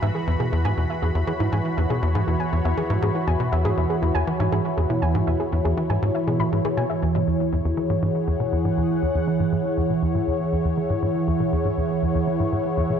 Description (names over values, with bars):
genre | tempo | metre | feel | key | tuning
ambient, sequencer-driven space music | 120 BPM | 4/4 | straight | E major | A4 = 440 Hz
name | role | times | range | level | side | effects
sweeping resonant pad | sustained chords | 0.0-13.0 s | E3 to B5 | -23 LUFS | right 1 dB | chorus
soft round pluck | arpeggios | 0.0-7.0 s | E4 to B5 | -30 LUFS | moving between left 4 dB and right 6 dB | chorus, auto-pan, tape echo
tight sequencer bass | riff | 0.0-13.0 s | E2 to E3 | -24 LUFS | equal | analog chorus, tape echo
room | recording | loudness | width
wet plate reverb, RT60 3.0 s | dark, warm production | -20 LUFS | side -8 dB against mid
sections
0.0-7.0 A section; 7.0-13.0 B section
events
filter sweep on analog synth bass 7.0-13.0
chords
0.0 E6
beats
0.02 0.52 | 1.02 1.52 2.02 2.52 | 3.02 3.52 4.02 4.52 | 5.02 5.52 6.02 6.52 | 7.02 7.52 8.02 8.52 | 9.02 9.52 10.02 10.52 | 11.02 11.52 12.02 12.52